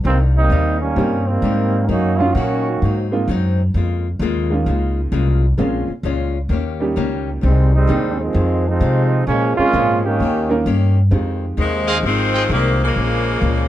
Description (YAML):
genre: jazz, big band swing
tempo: 130 BPM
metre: 4/4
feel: swing 66% on 8ths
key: unclear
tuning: A4 = 440 Hz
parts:
  - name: picked old ladder-braced acoustic guitar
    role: accompaniment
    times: 0.0-13.7 s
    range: F2 to G4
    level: -25 LUFS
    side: left 6 dB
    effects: none
  - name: upright bass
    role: bass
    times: 0.0-13.7 s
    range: Ab1 to C3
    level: -18 LUFS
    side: equal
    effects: none
  - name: dark trombone section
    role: second line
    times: 0.1-3.1, 7.4-10.6 s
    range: Eb3 to G4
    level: -18 LUFS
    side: right 3 dB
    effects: none
  - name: warm upright piano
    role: accompaniment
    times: 1.0-12.4 s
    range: Gb3 to F5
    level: -22 LUFS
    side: right 2 dB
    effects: none
  - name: bright saxophone section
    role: melody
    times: 11.6-13.7 s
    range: C3 to C4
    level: -18 LUFS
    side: left 1 dB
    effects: none
  - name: bright trumpet section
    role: stabs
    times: 11.9-12.4 s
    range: Ab4 to G5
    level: -20 LUFS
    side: right 2 dB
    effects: none
room: light reverb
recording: none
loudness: -15 LUFS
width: side -13 dB against mid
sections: 0.0-11.1 A section; 11.1-13.7 B section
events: trombone section solo 0.0-11.1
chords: 0.1 Cm7; 1.9 Ebm7; 2.8 Ab7; 3.7 Db6; 5.6 Bbm7; 6.5 Eb7; 7.4 Abmaj7; 8.4 Fm7; 9.3 Bbm7; 10.2 Eb7; 11.1 Fm7; 13.0 Bbm7